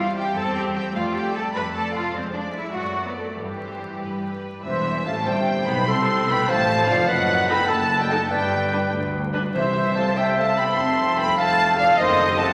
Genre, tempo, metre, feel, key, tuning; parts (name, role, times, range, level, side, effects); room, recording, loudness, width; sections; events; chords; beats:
classical, dramatic, fast romantic movement for symphony orchestra; 98 BPM (dotted quarters); 6/8; rubato; C major; A4 = 440 Hz
clear symphonic violin section; melody; 0.0-12.5 s; B4 to C6; -28 LUFS; equal
warm symphonic violin section; second line; 0.0-12.5 s; G4 to C6; -30 LUFS; equal
rich symphonic viola section; accompaniment; 0.0-12.5 s; E3 to C5; -33 LUFS; equal
concert harp; arpeggios; 0.0-12.5 s; E2 to C6; -34 LUFS; equal
rich symphonic cello section; bass; 0.0-12.5 s; D2 to B4; -33 LUFS; equal
rich symphonic double bass section; bass; 0.0-12.5 s; E1 to G2; -36 LUFS; equal
dark tuba; bass; 4.6-12.5 s; E1 to D2; -34 LUFS; equal
mellow concert flute; second line; 4.7-12.5 s; C5 to A5; -29 LUFS; equal
dark French horn section; sustained chords; 4.7-12.5 s; D#3 to C4; -34 LUFS; equal
mellow clarinet; second line; 5.3-12.5 s; A4 to F5; -26 LUFS; equal
timpani; percussion; 9.6-10.1 s; C3; -37 LUFS; equal
wet scoring stage reverb, RT60 2.1 s; vinyl crackle; -22 LUFS; mono
0.0-4.6 A section; 4.6-12.5 B section
0.0 C/E; 0.9 Dm7/F; 2.1 Dm7b5/F; 2.7 D7/F#; 3.4 C/G; 4.0 G; 4.6 C/E; 5.9 Fmaj7; 7.1 F#dim7; 8.3 G; 9.5 C; 10.8 Fmaj7; 12.0 F#dim7
0.36 | 0.95 1.54 | 2.13 2.74 | 3.37 4.01 | 4.65 5.26 | 5.88 6.48 | 7.08 7.69 | 8.31 8.93 | 9.55 10.17 | 10.78 11.38 | 11.98